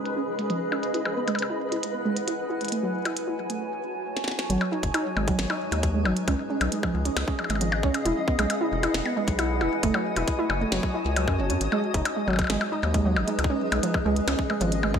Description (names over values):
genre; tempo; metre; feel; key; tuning
IDM; 135 BPM; 4/4; straight; G# phrygian; A4 = 440 Hz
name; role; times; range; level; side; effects
granular cloud pad; sustained chords; 0.0-15.0 s; G#3 to A5; -30 LUFS; left 2 dB; built-in reverb, vintage 12-bit sampler grit
flickering grainy texture; texture; 0.0-15.0 s; B4 to D#5; -35 LUFS; equal; built-in reverb
glitchy drum kit; drums; 0.1-14.9 s; hi-hat, percussion blips, snare drum; -30 LUFS; left 2 dB; low-pass filter on hats, studio reverb, low-pass filter on snare, low-pass filter on perc, ping-pong delay
warbly dusty pluck; arpeggios; 0.2-14.9 s; E#3 to E4; -28 LUFS; right 3 dB; lush chorus, digital delay
round analog bass; bass; 4.5-15.0 s; E1 to F#2; -28 LUFS; left 1 dB; none
electronic kick drum; drums; 4.8-15.0 s; none; -27 LUFS; left 1 dB; studio reverb
room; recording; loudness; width
light reverb; none; -23 LUFS; side -7 dB against mid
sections
0.0-4.5 A section; 4.5-15.0 B section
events
filter sweep on drum 0.0-4.5; break 3.6-4.5; drum fill 4.2-4.5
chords
0.0 C#7; 0.9 Emaj7; 2.7 F#m7; 4.5 G#m7; 6.3 C#7; 8.1 Emaj7; 9.8 F#m7; 11.6 G#m7; 13.4 C#7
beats
0.05 0.50 | 0.94 1.39 1.83 2.28 | 2.72 3.17 3.61 4.05 | 4.50 4.94 5.39 5.83 | 6.28 6.72 7.17 7.61 | 8.05 8.50 8.94 9.39 | 9.83 10.28 10.72 11.16 | 11.61 12.05 12.50 12.94 | 13.39 13.83 14.28 14.72